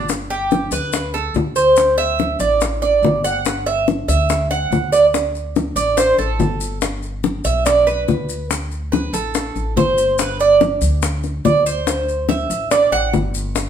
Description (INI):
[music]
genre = latin, Cuban son and guajira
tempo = 143 BPM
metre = 4/4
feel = straight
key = G major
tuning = A4 = 440 Hz
[part]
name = Cuban tres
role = arpeggios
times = 0.0-13.1 s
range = G4 to F#5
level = -16 LUFS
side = right 3 dB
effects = none
[part]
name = upright bass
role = bass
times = 0.0-13.7 s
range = G1 to D2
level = -24 LUFS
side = equal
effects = none
[part]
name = bongos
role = percussion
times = 0.1-13.7 s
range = none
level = -21 LUFS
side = left 5 dB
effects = none
[part]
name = maracas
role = percussion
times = 0.1-13.7 s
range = none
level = -28 LUFS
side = left 6 dB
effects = none
[sound]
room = moderate large studio reverb, RT60 0.9 s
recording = band playing live in one room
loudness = -15 LUFS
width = side -8 dB against mid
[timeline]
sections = 0.1-13.7 A section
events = Cuban tres solo 0.1-13.7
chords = 0.1 G; 1.8 D5; 3.5 G5; 5.1 D5; 6.8 G; 8.5 D5; 10.2 G5; 11.9 D5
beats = | 0.10 0.52 0.94 1.35 | 1.77 2.19 2.62 3.04 | 3.46 3.88 4.30 4.72 | 5.14 5.56 5.98 6.40 | 6.82 7.24 7.66 8.09 | 8.51 8.93 9.35 9.77 | 10.19 10.61 11.03 11.45 | 11.87 12.29 12.71 13.13 | 13.55